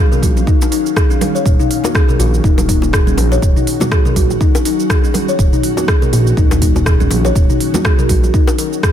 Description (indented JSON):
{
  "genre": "afro house",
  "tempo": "122 BPM",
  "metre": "4/4",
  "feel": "swing 57% on 16ths",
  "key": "Eb minor",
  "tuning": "A4 = 440 Hz",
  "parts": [
    { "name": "ethereal airy pad", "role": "sustained chords", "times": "0.0-8.9 s", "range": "Eb3 to F5", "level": "-22 LUFS", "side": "right 3 dB", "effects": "ensemble chorus, built-in reverb, phaser, sidechain pumping" },
    { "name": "kalimba", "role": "arpeggios", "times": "0.0-8.9 s", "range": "Db4 to Db5", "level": "-18 LUFS", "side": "left 6 dB", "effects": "sidechain pumping, digital delay" },
    { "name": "afro-pop drum kit", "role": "drums", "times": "0.1-8.9 s", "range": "hi-hat, rim click, shaker, toms", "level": "-21 LUFS", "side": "right 1 dB", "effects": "studio reverb" },
    { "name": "congas", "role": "percussion", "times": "0.1-8.2 s", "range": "none", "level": "-24 LUFS", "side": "right 5 dB", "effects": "none" },
    { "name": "smooth synth bass", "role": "bass", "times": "0.2-8.3 s", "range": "Eb1 to Bb1", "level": "-16 LUFS", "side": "equal", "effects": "sidechain pumping" },
    { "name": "electronic kick drum", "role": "drums", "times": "0.2-8.9 s", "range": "none", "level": "-13 LUFS", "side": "equal", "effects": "studio reverb" },
    { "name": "bongos", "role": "percussion", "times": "0.4-8.6 s", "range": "none", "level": "-24 LUFS", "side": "left 4 dB", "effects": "none" }
  ],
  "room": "little or no reverb",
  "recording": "none",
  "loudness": "-11 LUFS",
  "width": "side -10 dB against mid",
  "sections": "0.0-8.9 A section",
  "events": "none",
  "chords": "0.0 Ebm9"
}